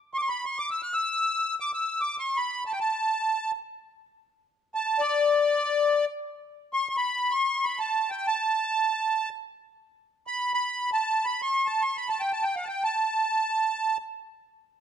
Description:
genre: Arabic maqam ensemble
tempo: free time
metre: none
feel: none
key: unclear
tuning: A4 = 440 Hz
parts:
  - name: accordion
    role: solo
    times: 0.1-14.0 s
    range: D5 to F#6-50c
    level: -24 LUFS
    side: equal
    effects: light tremolo tuning
room: light reverb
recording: dark, warm production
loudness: -24 LUFS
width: side -8 dB against mid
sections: 0.0-6.2 A section; 6.2-14.8 A section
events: none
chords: none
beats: free time

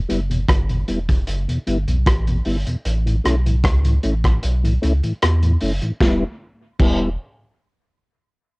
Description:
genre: dub reggae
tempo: 76 BPM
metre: 4/4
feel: straight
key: E dorian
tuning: A4 = 440 Hz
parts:
  - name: warm sub bass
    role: bass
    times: 0.0-7.2 s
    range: E1 to E2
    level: -19 LUFS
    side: equal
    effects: none
  - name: mellow tonewheel organ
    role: accompaniment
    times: 0.1-7.1 s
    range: E2 to E4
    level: -21 LUFS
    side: left 1 dB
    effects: chorus vibrato, slow rotary speaker, cassette tape
  - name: crunchy breakbeat drum kit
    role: drums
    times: 0.1-7.0 s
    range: crash cymbal, hi-hat, kick drum, rim click, snare drum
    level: -20 LUFS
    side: equal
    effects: cassette tape
room: little or no reverb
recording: home recording on cassette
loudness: -17 LUFS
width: side -26 dB against mid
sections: 0.0-6.0 A section; 6.0-8.6 B section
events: kick muted 4.4-6.0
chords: 0.0 Em; 2.9 A; 6.0 Em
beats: 0.49 1.28 2.07 | 2.86 3.64 4.43 5.22 | 6.01 6.80

